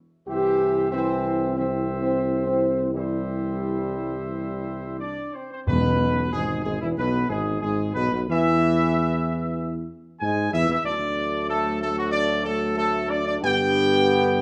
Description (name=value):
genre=classical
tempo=86-94 BPM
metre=4/4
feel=straight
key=unclear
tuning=A4 = 440 Hz
part: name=warm trumpet section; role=melody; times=0.3-14.4 s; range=E4 to G#5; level=-29 LUFS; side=equal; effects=none
part: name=clear trombone section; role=sustained chords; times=0.3-14.4 s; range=E2 to B3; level=-32 LUFS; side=equal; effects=none
part: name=mellow French horn section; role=sustained chords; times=0.3-14.4 s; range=E3 to G#4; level=-29 LUFS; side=equal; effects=none
part: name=mellow tuba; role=bass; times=0.3-14.4 s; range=E1 to G#2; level=-30 LUFS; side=equal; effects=none
part: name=timpani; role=percussion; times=5.7-6.6 s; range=E2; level=-30 LUFS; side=equal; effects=none
room=wet large studio reverb, RT60 1.3 s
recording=none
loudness=-24 LUFS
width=mono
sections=0.0-5.7 A section; 5.7-14.4 B section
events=none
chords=0.3 C; 5.7 E; 10.8 D; 13.4 G